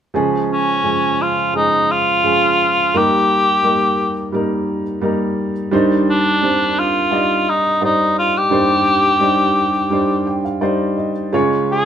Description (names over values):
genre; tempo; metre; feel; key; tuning
acoustic folk-pop ballad; 86 BPM; 4/4; straight; C minor; A4 = 440 Hz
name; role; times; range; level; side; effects
warm upright piano; accompaniment; 0.1-11.9 s; Db2 to G5; -18 LUFS; right 1 dB; none
warm cor anglais; melody; 0.5-11.9 s; Db4 to Ab4; -15 LUFS; left 1 dB; none
room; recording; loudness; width
moderate studio reverb, RT60 0.9 s; band playing live in one room; -14 LUFS; side -9 dB against mid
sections
0.2-11.9 A section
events
none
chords
0.2 Db; 2.9 Eb; 5.7 Cmadd9/Eb; 11.3 Db